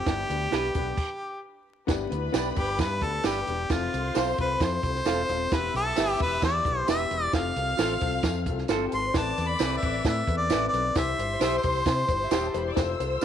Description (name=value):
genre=uptempo 1960s-style soul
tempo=132 BPM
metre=4/4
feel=straight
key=G mixolydian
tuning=A4 = 440 Hz
part: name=clear harmonica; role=melody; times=0.0-12.7 s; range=F4 to C6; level=-28 LUFS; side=left 1 dB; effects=none
part: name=dark grand piano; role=accompaniment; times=0.1-13.2 s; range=B3 to C5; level=-32 LUFS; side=left 10 dB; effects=none
part: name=fingered electric bass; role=bass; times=0.1-13.2 s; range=Eb1 to C3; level=-32 LUFS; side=equal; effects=none
part: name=compact cocktail drum kit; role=drums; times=0.1-13.2 s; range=crash cymbal, hi-hat, kick drum, snare drum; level=-29 LUFS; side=right 3 dB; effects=none
part: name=semi-hollow electric guitar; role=stabs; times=0.5-13.2 s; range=C4 to F5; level=-34 LUFS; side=right 10 dB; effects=none
part: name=warm symphonic violin section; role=second line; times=1.9-13.2 s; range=E4 to F6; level=-35 LUFS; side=left 2 dB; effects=none
part: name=tambourine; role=percussion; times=1.9-13.2 s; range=none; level=-42 LUFS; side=left 14 dB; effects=none
room=moderate spring reverb, RT60 1.8 s, studio reverb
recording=1960s-style stereo with parts hard left and right, vinyl crackle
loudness=-24 LUFS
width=side -9 dB against mid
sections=0.0-1.9 A section; 1.9-13.2 B section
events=stop 1.0-1.9; harmonica solo 1.9-13.2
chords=0.1 G; 3.7 F; 5.5 Em; 7.3 F; 9.1 Amadd9; 11.0 C